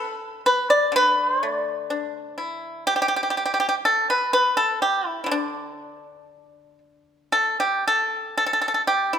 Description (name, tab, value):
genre	chinese traditional, Chinese solo plucked strings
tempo	61 BPM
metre	2/4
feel	uneven beats, rubato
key	D zhi mode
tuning	A4 = 441 Hz
part	pipa	solo	0.0-9.2 s	D3 to D5	-20 LUFS	equal	none
room	moderate concert hall reverb, RT60 1.9 s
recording	none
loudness	-20 LUFS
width	side -8 dB against mid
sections	0.0-7.3 A section; 7.3-9.2 B section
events	none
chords	none